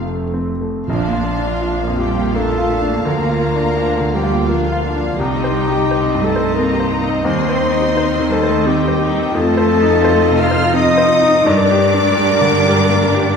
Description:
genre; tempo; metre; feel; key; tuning
classical, romantic movement for piano and orchestra; 85 BPM; 3/4; uneven beats, rubato; Bb major; A4 = 438 Hz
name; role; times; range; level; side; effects
clear baby grand piano; melody; 0.0-13.4 s; Bb1 to C5; -18 LUFS; left 1 dB; none
rich symphonic violin section; melody; 0.0-13.4 s; D5 to F5; -29 LUFS; left 2 dB; none
clear symphonic violin section; second line; 0.0-13.4 s; F5 to F6; -24 LUFS; left 2 dB; none
warm clarinet; second line; 0.0-13.4 s; F4 to F5; -18 LUFS; left 2 dB; none
rich symphonic viola section; accompaniment; 0.0-13.4 s; F3 to Bb4; -23 LUFS; right 2 dB; none
rich symphonic cello section; bass; 0.0-13.4 s; F2 to F4; -23 LUFS; right 2 dB; none
rich symphonic double bass section; bass; 0.0-13.4 s; F1 to G2; -23 LUFS; right 2 dB; none
timpani; percussion; 0.9-1.9 s; Bb2; -29 LUFS; right 3 dB; none
room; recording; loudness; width
wet scoring stage reverb, RT60 1.4 s; heard from further back in the room; -13 LUFS; side -6 dB against mid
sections
0.9-13.4 A section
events
none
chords
0.0 F; 0.9 Bb; 3.1 Bb/D; 5.2 Cm; 7.3 Cm/Eb; 9.3 F7; 11.5 Gm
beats
0.05 | 0.88 1.62 2.35 | 3.06 3.77 4.49 | 5.19 5.89 6.57 | 7.26 7.96 8.66 | 9.35 10.05 10.75 | 11.45 12.18 12.89

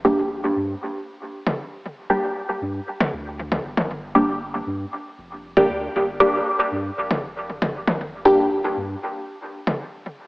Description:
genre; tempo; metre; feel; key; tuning
dub techno; 117 BPM; 4/4; swing 53% on 16ths; G minor; A4 = 440 Hz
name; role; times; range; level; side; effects
filtered dub chord stab; stabs; 0.0-8.4 s; G3 to G4; -20 LUFS; equal; phaser, dub echo
soft dub sub bass; bass; 0.0-9.0 s; F1 to G2; -33 LUFS; equal; none
electronic toms; percussion; 1.5-9.8 s; none; -24 LUFS; equal; dub echo
room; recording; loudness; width
wet lush hall reverb, RT60 1.9 s; AM radio sound; -20 LUFS; side -22 dB against mid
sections
0.0-10.3 A section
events
none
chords
0.0 G5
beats
0.30 0.82 1.33 | 1.84 2.35 2.87 3.38 | 3.89 4.41 4.92 5.43 | 5.95 6.46 6.97 7.48 | 8.00 8.51 9.02 9.54

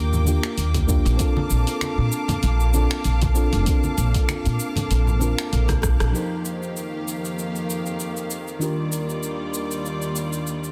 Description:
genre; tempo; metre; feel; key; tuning
sunset chillout; 97 BPM; 4/4; swing 55% on 16ths; Bb major; A4 = 439 Hz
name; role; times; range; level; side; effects
mellow FM electric piano; accompaniment; 0.0-10.7 s; Eb3 to C5; -30 LUFS; equal; chorus, digital delay
clear studio string section; sustained chords; 0.0-10.7 s; Eb2 to D6; -32 LUFS; equal; none
upright bass; bass; 0.0-6.1 s; F1 to Bb2; -22 LUFS; equal; none
deep house drum kit; drums; 0.1-10.7 s; cabasa, finger snaps, hi-hat, rim click; -32 LUFS; equal; soft clipping on snare
congas and bongos; percussion; 0.1-6.0 s; none; -31 LUFS; equal; none
electronic kick drum; drums; 0.8-6.0 s; none; -25 LUFS; equal; none
room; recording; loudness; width
light reverb, digital ambience; dense, heavily limited modern master; -23 LUFS; mono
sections
0.0-6.1 A section; 6.1-10.7 B section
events
drum fill 5.7-6.1; band accent 6.0-6.3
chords
0.0 Ebmaj7; 1.2 Bbmaj7; 6.1 F9sus4; 8.6 Ebmaj7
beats
0.58 | 1.20 1.82 2.43 3.05 | 3.67 4.29 4.91 5.53 | 6.15 6.76 7.38 8.00 | 8.62 9.24 9.86 10.48

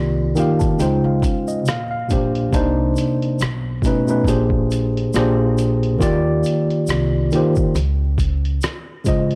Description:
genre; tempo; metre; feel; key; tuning
lo-fi hip hop; 69 BPM; 4/4; swing 57% on 16ths; unclear; A4 = 440 Hz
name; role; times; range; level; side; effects
mellow tine electric piano; accompaniment; 0.0-9.4 s; Bb2 to A5; -20 LUFS; equal; low-pass filter
upright bass; bass; 0.0-8.6 s; Bb1 to Db3; -25 LUFS; equal; none
lo-fi sampler-style drum kit; drums; 0.4-9.4 s; hi-hat, kick drum, rim click; -25 LUFS; equal; vintage 12-bit sampler grit
tube shaker; percussion; 0.4-9.3 s; none; -42 LUFS; equal; none
room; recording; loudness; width
digital ambience; dry, gritty hardware recording, vinyl crackle; -19 LUFS; mono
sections
0.0-2.5 A section; 2.5-9.4 B section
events
tine electric piano fill 0.0-2.5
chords
0.0 Ebmaj7; 0.8 Dbmaj9; 1.7 Bb69; 2.5 Cm9; 3.4 B9; 4.3 Bb13; 6.0 Ebmaj7; 7.7 Dbmaj9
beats
0.79 1.66 | 2.52 3.40 4.26 5.13 | 6.00 6.87 7.74 8.61

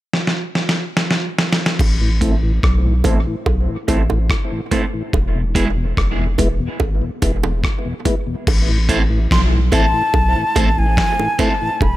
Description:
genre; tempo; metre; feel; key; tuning
dub reggae; 72 BPM; 4/4; straight; A harmonic minor; A4 = 438 Hz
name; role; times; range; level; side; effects
dusty soul sampler-style drum kit; drums; 0.1-12.0 s; crash cymbal, hi-hat, kick drum, rim click, snare drum; -19 LUFS; equal; none
soft dub sub bass; bass; 1.8-12.0 s; E1 to B1; -17 LUFS; equal; none
bongos; percussion; 1.8-12.0 s; none; -27 LUFS; right 6 dB; dub echo
mellow tonewheel organ; accompaniment; 2.0-11.7 s; E2 to E4; -24 LUFS; left 2 dB; overdrive, chorus vibrato, slow rotary speaker, low-pass filter, dub echo
electric guitar at the edge of break-up; accompaniment; 2.2-11.5 s; G#3 to A4; -24 LUFS; right 4 dB; low-pass filter, dub echo
breathy mellow concert flute; melody; 9.3-12.0 s; G#5 to C6; -19 LUFS; left 1 dB; dub echo
room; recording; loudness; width
light reverb; none; -15 LUFS; side -15 dB against mid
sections
0.0-1.8 A section; 1.8-8.5 B section; 8.5-12.0 C section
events
drum fill 0.1-1.8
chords
0.0 N.C.; 1.8 Am; 5.1 E; 8.5 Am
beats
0.13 0.96 | 1.80 2.63 3.46 4.30 | 5.13 5.97 6.80 7.64 | 8.47 9.30 10.14 10.97 | 11.81

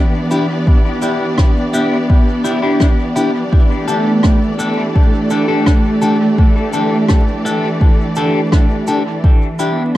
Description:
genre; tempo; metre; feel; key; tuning
ambient dub; 84 BPM; 4/4; straight; unclear; A4 = 436 Hz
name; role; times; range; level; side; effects
rich studio string section; sustained chords; 0.0-10.0 s; E3 to D5; -16 LUFS; right 1 dB; none
clean electric guitar; stabs; 0.3-9.8 s; D4 to A4; -19 LUFS; left 2 dB; phaser, dub echo
cabasa and rim click; drums; 0.3-10.0 s; none; -23 LUFS; right 1 dB; dub echo
electronic kick drum; drums; 0.7-9.4 s; none; -11 LUFS; equal; none
room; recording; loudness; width
moderate echo chamber reverb, RT60 1.8 s, studio reverb; dark, warm production, vinyl crackle; -11 LUFS; side -15 dB against mid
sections
0.0-10.0 A section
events
none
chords
0.0 Em7; 3.5 A7sus4; 9.2 Em7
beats
| 0.67 1.38 2.10 2.81 | 3.52 4.24 4.95 5.67 | 6.38 7.10 7.81 8.53 | 9.24 9.95

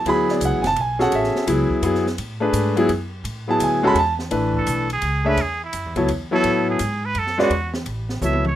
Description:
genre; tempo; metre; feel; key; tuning
modal jazz; 169 BPM; 3/4; swing 65% on 8ths; A major; A4 = 438 Hz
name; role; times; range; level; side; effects
clear concert grand piano; accompaniment; 0.0-8.4 s; E3 to B5; -19 LUFS; left 1 dB; none
upright bass; bass; 0.0-8.6 s; F#1 to A2; -26 LUFS; equal; none
open jazz drum kit; drums; 0.1-8.5 s; hi-hat, kick drum, ride cymbal, snare drum, toms; -32 LUFS; equal; none
trumpet with straight mute; melody; 4.6-8.6 s; E4 to E5; -24 LUFS; right 3 dB; none
room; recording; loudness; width
light reverb; rough home demo mix; -18 LUFS; side -12 dB against mid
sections
0.0-4.3 A section; 4.3-8.6 A section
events
muted trumpet solo 4.3-8.6; drum fill 8.2-8.6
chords
0.1 Dmaj9; 4.3 Amaj9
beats
| 0.05 0.41 0.76 | 1.12 1.47 1.83 | 2.18 2.54 2.89 | 3.25 3.60 3.96 | 4.31 4.67 5.02 | 5.38 5.73 6.09 | 6.44 6.80 7.15 | 7.51 7.86 8.22

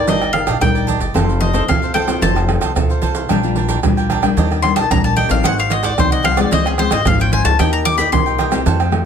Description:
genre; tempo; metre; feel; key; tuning
samba and choro; 112 BPM; 4/4; straight; unclear; A4 = 440 Hz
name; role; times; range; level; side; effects
mandolin; melody; 0.0-8.6 s; Ab4 to D6; -18 LUFS; left 5 dB; none
cavaquinho; accompaniment; 0.0-9.0 s; D4 to G5; -24 LUFS; right 8 dB; none
nylon-string guitar; accompaniment; 0.0-9.1 s; Ab2 to Bb4; -21 LUFS; left 7 dB; none
upright bass; bass; 0.1-9.0 s; F1 to F2; -19 LUFS; left 1 dB; none
maracas, surdo, pandeiro and tamborim; percussion; 0.1-9.1 s; none; -19 LUFS; right 6 dB; none
room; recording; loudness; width
light reverb; close, detailed microphones; -13 LUFS; side -7 dB against mid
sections
0.0-9.1 A section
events
mandolin solo 0.0-9.1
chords
0.1 Ebmaj7/G; 1.1 F; 3.3 Bb6; 4.4 Ebmaj7; 5.4 Ab7; 6.5 Dbmaj7; 7.6 Eb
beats
0.07 0.61 | 1.15 1.68 2.22 2.76 | 3.30 3.83 4.37 4.91 | 5.44 5.98 6.52 7.05 | 7.59 8.13 8.66

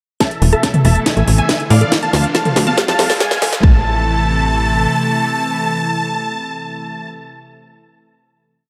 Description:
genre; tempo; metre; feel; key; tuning
uplifting trance; 140 BPM; 4/4; straight; A harmonic minor; A4 = 441 Hz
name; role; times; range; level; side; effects
dense compressed supersaw; melody; 0.2-7.1 s; D5 to A5; -22 LUFS; equal; sidechain pumping, low-pass filter, tape echo
analog pluck; second line; 0.2-7.1 s; F5 to A5; -27 LUFS; equal; chorus, sidechain pumping, tape echo
lush unison pad; sustained chords; 0.2-7.1 s; B2 to A4; -24 LUFS; equal; chorus, sidechain pumping
unison pluck; arpeggios; 0.2-3.8 s; A3 to A4; -26 LUFS; equal; none
electronic kick drum; drums; 0.2-3.7 s; none; -16 LUFS; equal; high-pass filter on kick, high-pass filter on room
house drum kit; drums; 0.2-3.6 s; hi-hat, snare drum, toms; -20 LUFS; equal; sidechain pumping on hats, sidechain pumping on toms
riser; sound effects; 1.5-3.6 s; none; -30 LUFS; equal; none
tight sequencer bass; bass; 0.4-4.9 s; E1 to A2; -17 LUFS; equal; sidechain pumping
room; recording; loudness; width
moderate lush hall reverb, RT60 1.9 s, digital ambience; dark, warm production, high-pass filter; -15 LUFS; mono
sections
0.2-3.6 build; 3.6-7.1 final chord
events
build-up 0.2-3.6; drum fill 0.2-3.6; filter sweep 0.2-3.6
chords
0.2 Esus4; 1.1 Am; 1.9 Dm7; 2.8 Fmaj7; 3.6 Am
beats
| 0.20 0.63 1.06 1.49 | 1.92 2.35 2.78 3.21 | 3.63 4.06 4.49 4.92 | 5.35 5.78 6.21 6.63

